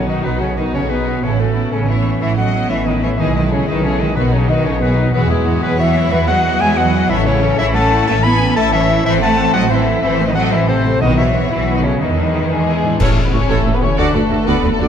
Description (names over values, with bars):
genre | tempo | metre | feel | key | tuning
cinematic, heroic adventure film score | 122 BPM (dotted quarters) | 12/8 | straight | E major | A4 = 442 Hz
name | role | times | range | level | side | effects
rich symphonic violin section | melody | 0.0-14.9 s | C#4 to D5 | -26 LUFS | left 4 dB | none
clear clarinet | second line | 0.0-14.9 s | E4 to B5 | -22 LUFS | left 2 dB | none
dark cor anglais | second line | 0.0-12.8 s | G#3 to B4 | -26 LUFS | right 2 dB | none
hollow concert flute | second line | 0.0-14.9 s | G#4 to D6 | -25 LUFS | left 1 dB | none
warm symphonic violin section | second line | 0.0-14.9 s | E4 to G#5 | -25 LUFS | left 4 dB | none
rich studio viola section | accompaniment | 0.0-14.9 s | D#3 to A4 | -24 LUFS | right 1 dB | none
clear French horn section | sustained chords | 0.0-14.9 s | E3 to F#4 | -23 LUFS | left 3 dB | none
concert harp | arpeggios | 0.0-14.9 s | A2 to E6 | -25 LUFS | left 8 dB | none
warm studio double bass section | bass | 0.0-14.9 s | A1 to E2 | -19 LUFS | right 3 dB | none
rich symphonic cello section | bass | 0.1-14.9 s | D2 to B3 | -20 LUFS | right 2 dB | none
timpani | percussion | 4.2-4.6, 11.0-13.5 s | A2 to B2 | -25 LUFS | equal | none
cymbal swell, clash cymbals and concert bass drum | percussion | 9.1-13.6 s | none | -22 LUFS | equal | none
mellow tuba | bass | 13.0-14.9 s | A1 to D2 | -22 LUFS | right 3 dB | none
room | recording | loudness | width
moderate concert hall reverb, RT60 1.9 s | dark, warm production | -13 LUFS | side -8 dB against mid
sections
0.0-13.0 A section; 13.0-14.9 B section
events
band accent 13.0-13.3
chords
0.0 B; 1.2 Aadd9; 3.2 E/B; 4.2 B; 5.1 Eadd9; 7.1 A; 9.1 Am; 11.0 Bsus4; 12.0 E7; 13.0 A; 14.0 D